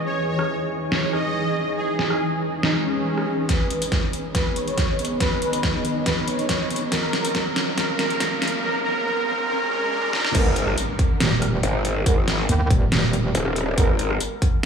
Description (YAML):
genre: heavy wobble dubstep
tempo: 140 BPM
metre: 4/4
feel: half-time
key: G# minor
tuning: A4 = 436 Hz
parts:
  - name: lush unison pad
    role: sustained chords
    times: 0.0-14.7 s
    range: D#3 to A#4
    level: -30 LUFS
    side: equal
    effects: chorus, sidechain pumping
  - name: granular cloud pad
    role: texture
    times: 0.0-8.6 s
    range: E3 to C#6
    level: -32 LUFS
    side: left 1 dB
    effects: built-in reverb, sidechain pumping
  - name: soft supersaw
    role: melody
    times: 0.1-10.3 s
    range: C#4 to D#5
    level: -26 LUFS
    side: right 1 dB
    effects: low-pass filter, analog delay
  - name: dubstep drum kit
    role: drums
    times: 0.4-14.7 s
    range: crash cymbal, hi-hat, rim click, snare drum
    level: -25 LUFS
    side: equal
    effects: overdrive, low-pass filter on snare, low-pass filter on hats, low-pass filter on cymbals, low-pass filter on room
  - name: swell, riser and impact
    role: sound effects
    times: 2.8-12.1 s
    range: none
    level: -32 LUFS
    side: equal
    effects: none
  - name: electronic kick drum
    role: drums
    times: 3.5-14.5 s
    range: none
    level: -22 LUFS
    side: equal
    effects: overdrive
  - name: mellow brass ensemble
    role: stabs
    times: 10.3-13.9 s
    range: G#3 to A#4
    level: -31 LUFS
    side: right 4 dB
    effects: analog delay
  - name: growl bass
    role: bass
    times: 10.3-14.2 s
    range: D#1 to G#1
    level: -22 LUFS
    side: left 1 dB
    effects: chorus, overdrive
  - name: metallic wobble bass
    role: bass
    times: 11.2-14.7 s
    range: D#1 to D#2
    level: -20 LUFS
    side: right 1 dB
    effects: chorus, overdrive
room: wet cathedral reverb, RT60 7.0 s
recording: dreamy mix soaked in reverb, high-pass filter, small room reverb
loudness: -20 LUFS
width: side -6 dB against mid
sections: 0.0-3.5 A section; 3.5-10.3 B section; 10.3-14.7 C section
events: swell 2.8-3.5, 9.5-10.3; build-up 3.5-10.3; drum fill 3.5-8.6, 10.1; filter sweep on supersaw synth 3.5-10.3; filter sweep 3.5-10.3; riser 3.7-10.3; drop 10.3-14.7; impact 10.3-12.1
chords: 0.0 C#m; 3.5 G#m; 6.9 A#m; 10.3 G#madd9